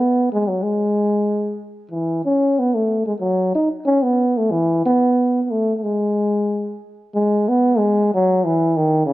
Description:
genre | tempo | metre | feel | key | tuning
alpine folk | 92 BPM | 2/4 | swing 53% on 8ths | unclear | A4 = 440 Hz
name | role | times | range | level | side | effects
warm euphonium | solo | 0.0-9.1 s | C#3 to D#4 | -16 LUFS | equal | tape echo
room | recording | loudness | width
moderate studio reverb, RT60 0.6 s | dark, warm production | -16 LUFS | side -16 dB against mid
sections
0.0-7.1 A section; 7.1-9.1 B section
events
none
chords
none

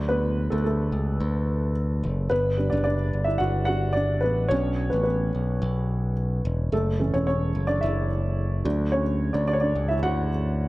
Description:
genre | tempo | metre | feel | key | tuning
pop | 109 BPM | 4/4 | straight | unclear | A4 = 439 Hz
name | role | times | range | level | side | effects
dark upright piano | accompaniment | 0.0-10.7 s | E3 to F#5 | -26 LUFS | right 1 dB | plate reverb
modern bright picked electric bass | bass | 0.0-10.7 s | E1 to D2 | -25 LUFS | equal | none
room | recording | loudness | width
moderate large studio reverb, RT60 0.8 s, small room reverb | none | -22 LUFS | side -18 dB against mid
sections
0.0-10.7 A section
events
upright piano solo 0.0-10.7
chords
0.0 D; 2.3 G; 4.5 Bm; 6.7 F#m7; 8.7 D

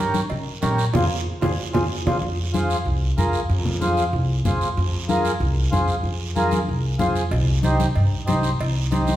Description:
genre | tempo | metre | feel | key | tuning
latin, cumbia | 188 BPM | 4/4 | straight | F minor | A4 = 440 Hz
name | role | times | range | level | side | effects
mellow accordion | accompaniment | 0.0-9.1 s | Eb4 to Db5 | -24 LUFS | equal | none
upright bass | bass | 0.0-9.1 s | C2 to Db3 | -22 LUFS | equal | none
congas | percussion | 0.1-9.2 s | none | -26 LUFS | left 2 dB | none
guiro | percussion | 0.1-9.2 s | none | -35 LUFS | right 6 dB | none
cowbell and timbales | percussion | 0.3-2.1, 7.3-9.1 s | none | -30 LUFS | right 4 dB | none
room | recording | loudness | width
wet large studio reverb, RT60 1.2 s | heard from further back in the room | -19 LUFS | side -13 dB against mid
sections
0.0-2.2 A section; 2.2-9.2 B section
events
band accent 0.9-2.2; drum fill 1.6-2.2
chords
0.0 Gdim; 0.9 Fm; 7.3 Cm

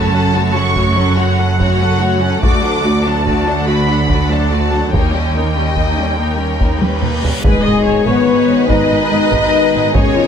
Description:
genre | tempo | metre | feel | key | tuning
cinematic, epic orchestral film score | 96 BPM (dotted quarters) | 12/8 | straight | unclear | A4 = 440 Hz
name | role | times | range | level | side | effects
rich symphonic violin section | melody | 0.0-10.3 s | G#4 to D6 | -21 LUFS | left 2 dB | none
rich symphonic violin section | second line | 0.0-10.3 s | F#4 to F#5 | -22 LUFS | left 2 dB | none
clear symphonic viola section | accompaniment | 0.0-10.3 s | F#3 to D#5 | -20 LUFS | left 1 dB | none
dark symphonic double bass section | bass | 0.0-10.2 s | F#1 to D#2 | -20 LUFS | right 3 dB | none
rich symphonic cello section | bass | 0.0-10.2 s | D2 to G#2 | -20 LUFS | right 2 dB | none
mellow French horn section | sustained chords | 0.3-10.3 s | F#3 to D#4 | -17 LUFS | left 4 dB | none
taiko ensemble | drums | 0.8-10.3 s | none | -19 LUFS | equal | none
reverse cymbal and impact | sound effects | 6.8-9.9 s | none | -26 LUFS | equal | none
clear trombone section | sustained chords | 7.4-10.3 s | B2 to D#3 | -24 LUFS | right 6 dB | none
warm symphonic string section | sustained chords | 7.4-10.3 s | G#3 to D#5 | -23 LUFS | equal | none
room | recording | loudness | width
light reverb | close, detailed microphones | -12 LUFS | side -7 dB against mid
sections
0.0-7.4 A section; 7.4-10.3 B section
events
reverse cymbal 6.8-7.4; drum fill 6.8-7.4; impact 7.4-9.9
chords
0.0 F#m; 2.4 D; 4.9 D#7; 7.4 G#m

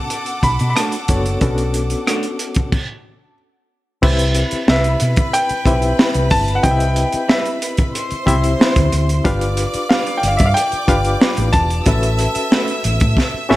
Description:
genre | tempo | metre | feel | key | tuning
lush 1970s-style soul | 92 BPM | 4/4 | straight | unclear | A4 = 441 Hz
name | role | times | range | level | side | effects
clear grand piano | melody | 0.0-13.6 s | E5 to B5 | -21 LUFS | equal | none
bright studio violin section | second line | 0.0-13.6 s | A4 to E6 | -26 LUFS | right 1 dB | none
barky reed electric piano | accompaniment | 0.0-13.6 s | B3 to F5 | -22 LUFS | left 2 dB | overdrive, fast tremolo
tight funk drum kit | drums | 0.1-13.6 s | crash cymbal, hi-hat, kick drum, rim click, snare drum | -17 LUFS | equal | none
hollow-body short-scale fingered electric bass | bass | 0.4-13.6 s | E1 to B2 | -18 LUFS | equal | none
electric guitar through a small old amp | riff | 0.8-12.7 s | G3 to C#5 | -26 LUFS | right 2 dB | none
bright trombone section | stabs | 13.5-13.6 s | F#2 to C#4 | -16 LUFS | right 6 dB | none
room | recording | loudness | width
light reverb, studio reverb | none | -14 LUFS | side -16 dB against mid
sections
0.0-4.0 A section; 4.0-13.6 B section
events
stop 2.7-4.0; band accent 11.9-13.6; drum fill 13.2-13.6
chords
0.0 Bm9; 3.4 N.C.; 4.0 Cmaj7; 9.2 G7; 11.9 A69

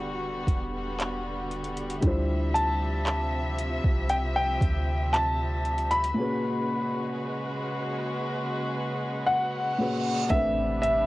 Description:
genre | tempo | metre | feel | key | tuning
contemporary R&B | 58 BPM | 4/4 | straight | unclear | A4 = 440 Hz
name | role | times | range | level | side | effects
felt-muted upright piano | accompaniment | 0.0-11.1 s | A#2 to C5 | -32 LUFS | left 1 dB | cassette tape
warm chamber string section | sustained chords | 0.0-11.1 s | C3 to E5 | -32 LUFS | equal | cassette tape
warm 808-style bass | bass | 0.0-11.1 s | E1 to D2 | -30 LUFS | equal | none
smooth R&B drum kit | drums | 0.5-11.1 s | handclaps, hi-hat, kick drum | -28 LUFS | equal | overdrive, cassette tape
warm concert grand piano | melody | 2.5-11.1 s | E5 to B5 | -27 LUFS | left 1 dB | cassette tape
reverse cymbal and impact | sound effects | 9.5-11.1 s | none | -39 LUFS | right 4 dB | none
room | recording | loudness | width
light reverb | home recording on cassette | -25 LUFS | side -18 dB against mid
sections
0.0-10.3 A section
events
break 6.2-10.3; reverse cymbal 9.5-10.3; impact 10.3-11.1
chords
0.0 Em11; 2.0 Dm11; 6.2 G#m11; 10.3 Am11

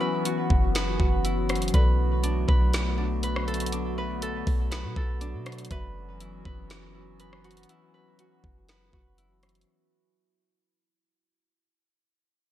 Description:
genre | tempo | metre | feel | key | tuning
hip hop, atmospheric cloud-rap | 121 BPM | 4/4 | half-time | unclear | A4 = 440 Hz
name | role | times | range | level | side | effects
warbly tape-like pad | sustained chords | 0.0-9.6 s | D3 to F#4 | -32 LUFS | left 2 dB | chorus, built-in reverb, sidechain pumping
Celtic harp | arpeggios | 0.0-11.8 s | D4 to B4 | -34 LUFS | equal | digital delay
buzzing marimba with medium mallets | texture | 0.0-9.7 s | F#4 to B5 | -40 LUFS | left 2 dB | none
smooth R&B drum kit | drums | 0.3-9.7 s | hi-hat, kick drum, rim click, snare drum | -27 LUFS | equal | gated reverb
clean 808-style bass | bass | 0.5-9.6 s | F#1 to B2 | -28 LUFS | equal | none
room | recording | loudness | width
digital ambience | bright 1980s-style digital production | -23 LUFS | side -12 dB against mid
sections
0.0-9.7 A section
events
fade-out 0.0-9.7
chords
0.0 F#7sus4; 1.7 Bm7; 5.7 F#7sus4

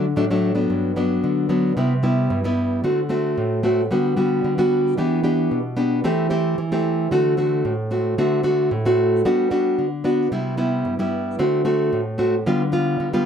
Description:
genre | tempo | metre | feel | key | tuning
samba | 112 BPM | 4/4 | straight | G major | A4 = 439 Hz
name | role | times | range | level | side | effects
nylon-string guitar | solo | 0.0-13.3 s | G2 to G4 | -18 LUFS | equal | none
room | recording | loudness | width
light reverb | close, detailed microphones | -18 LUFS | side -8 dB against mid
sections
0.7-13.3 A section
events
none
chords
0.0 D; 0.7 Gmaj7; 1.8 Cmaj7; 2.8 D7; 3.9 Gmaj7/D; 5.0 Em7; 6.0 Am7/E; 7.1 D7; 9.3 Gmaj7; 10.3 Cmaj7; 11.4 D7; 12.5 G7/D

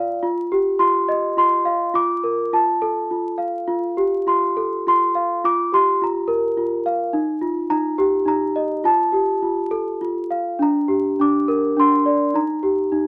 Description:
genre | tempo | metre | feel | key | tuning
children's music, lullaby | 104 BPM | 3/4 | rubato | Bb major | A4 = 438 Hz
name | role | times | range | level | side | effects
celesta | solo | 0.0-13.1 s | D4 to D6 | -20 LUFS | equal | none
room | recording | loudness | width
moderate studio reverb, RT60 0.5 s | vinyl crackle | -20 LUFS | mono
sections
0.0-10.6 A section; 10.6-13.1 B section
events
none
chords
0.2 Ebadd9; 1.9 Bb/F; 2.5 Fadd9; 5.4 Gm7; 7.1 Ebadd9; 8.8 Fadd9; 10.6 Bb6; 12.3 Eb

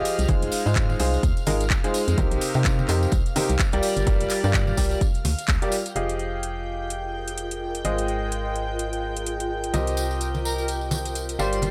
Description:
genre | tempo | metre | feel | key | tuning
piano house | 127 BPM | 4/4 | swing 58% on 16ths | F dorian | A4 = 438 Hz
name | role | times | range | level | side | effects
dark symphonic violin section | sustained chords | 0.0-11.7 s | F5 to G6 | -37 LUFS | equal | sidechain pumping
bright upright piano | riff | 0.0-11.7 s | C3 to F5 | -30 LUFS | equal | sidechain pumping, tape echo
organ-like FM bass | bass | 0.0-11.7 s | F1 to C3 | -29 LUFS | equal | sidechain pumping
house drum kit | drums | 0.1-11.7 s | handclaps, hi-hat | -32 LUFS | equal | none
tambourine and congas | percussion | 0.1-5.9, 9.7-11.7 s | none | -35 LUFS | equal | none
electronic kick drum | drums | 0.3-5.6 s | none | -26 LUFS | equal | none
granular cloud pad | texture | 6.6-11.7 s | F4 to Eb5 | -36 LUFS | equal | built-in reverb, sidechain pumping
airy dreamy lead | melody | 10.4-11.6 s | Bb4 to C5 | -34 LUFS | equal | chorus, tape echo
room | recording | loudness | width
little or no reverb | dry, gritty hardware recording | -24 LUFS | mono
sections
0.0-6.0 A section; 6.0-11.7 B section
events
band accent 5.5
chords
0.3 Ab6; 2.2 Cm7; 3.8 Gm7; 6.0 Fm9; 7.8 Ab6; 9.7 Cm7

